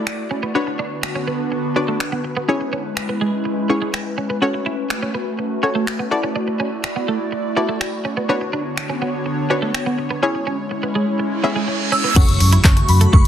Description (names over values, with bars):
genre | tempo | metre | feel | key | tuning
dance-pop | 124 BPM | 4/4 | straight | F# minor | A4 = 440 Hz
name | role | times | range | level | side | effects
analog pluck | accompaniment | 0.0-13.0 s | C#4 to E5 | -22 LUFS | left 2 dB | chorus, sidechain pumping
airy breathy pad | sustained chords | 0.0-13.3 s | C#3 to D5 | -23 LUFS | equal | chorus, sidechain pumping
twelve-string electric guitar | riff | 0.0-13.2 s | G#3 to F#4 | -25 LUFS | right 4 dB | analog chorus
deep house drum kit | drums | 0.1-13.3 s | crash cymbal, finger snaps, handclaps, hi-hat, kick drum | -17 LUFS | equal | soft clipping on snare
reverse cymbal and impact | sound effects | 11.4-13.3 s | none | -24 LUFS | right 2 dB | none
shimmering bell with halo | melody | 11.9-13.3 s | B5 to E6 | -21 LUFS | equal | ensemble chorus, tape echo
vintage muted fingered electric bass | bass | 12.2-13.3 s | F#1 to F#2 | -14 LUFS | equal | sidechain pumping
group handclap | percussion | 12.6-12.8 s | none | barely audible | none | none
room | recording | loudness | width
light reverb, digital ambience | dense, heavily limited modern master | -17 LUFS | side -10 dB against mid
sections
0.0-12.2 A section; 12.2-13.3 B section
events
reverse cymbal 11.4-12.2; impact 12.2-13.3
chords
0.0 Dadd9; 0.6 Bmadd9/D; 2.5 C#m; 4.4 F#m; 6.1 Dadd9; 8.3 Bmadd9/D; 10.2 C#m; 12.2 F#m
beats
0.07 | 0.55 1.03 1.52 2.00 | 2.48 2.97 3.45 3.94 | 4.42 4.91 5.39 5.87 | 6.36 6.84 7.32 7.81 | 8.29 8.78 9.26 9.74 | 10.23 10.71 11.20 11.68 | 12.16 12.65 13.13